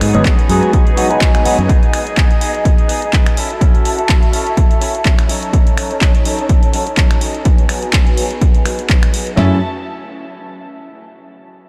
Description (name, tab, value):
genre	filtered disco house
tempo	125 BPM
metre	4/4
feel	swing 55% on 16ths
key	F# dorian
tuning	A4 = 441 Hz
part	dark studio violin section	sustained chords	0.0-9.6 s	D#4 to A5	-25 LUFS	equal	sidechain pumping, low-pass filter
part	direct-recorded clean electric guitar	riff	0.0-9.6 s	F#3 to A4	-27 LUFS	equal	lush chorus, sidechain pumping, low-pass filter
part	overdriven fingered electric bass	bass	0.0-1.7, 9.4-9.6 s	G#1 to G#2	-16 LUFS	equal	tube saturation, sidechain pumping, low-pass filter
part	punchy analog drum machine	drums	0.0-9.4 s	finger snaps, handclaps, hi-hat	-24 LUFS	equal	sidechain pumping on hats
part	overdriven tine electric piano	accompaniment	0.1-1.6, 9.4-9.6 s	F#3 to B4	-22 LUFS	equal	phaser, vintage 12-bit sampler grit, sidechain pumping, low-pass filter
part	punchy analog drum machine	drums	0.3-9.5 s	kick drum, snare drum, toms	-14 LUFS	equal	none
room	light reverb, digital ambience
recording	none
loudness	-13 LUFS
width	mono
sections	0.0-9.4 A section; 9.4-11.3 B section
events	filter sweep 0.0-9.4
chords	0.0 G#m7; 1.7 B6; 3.4 F#m7; 5.3 F#m6; 7.5 G#m7; 9.4 F#m7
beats	0.26 0.73 1.22 | 1.70 2.17 2.65 3.13 | 3.62 4.09 4.58 5.05 | 5.54 6.01 6.50 6.97 | 7.46 7.93 8.41 8.89 | 9.38